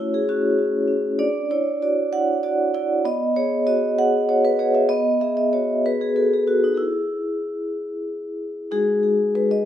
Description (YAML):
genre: classical, contemporary piece for solo vibraphone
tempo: 65 BPM (dotted quarters)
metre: 6/8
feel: straight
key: unclear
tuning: A4 = 441 Hz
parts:
  - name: vibraphone with medium mallets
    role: solo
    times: 0.0-9.7 s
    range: G#3 to F#5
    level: -19 LUFS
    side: equal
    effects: none
room: wet recital hall reverb, RT60 1.4 s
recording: none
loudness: -19 LUFS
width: side -10 dB against mid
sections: 0.0-8.7 A section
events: none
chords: 0.0 A6; 1.2 Dadd9; 3.1 B5; 6.8 N.C.; 8.7 G#5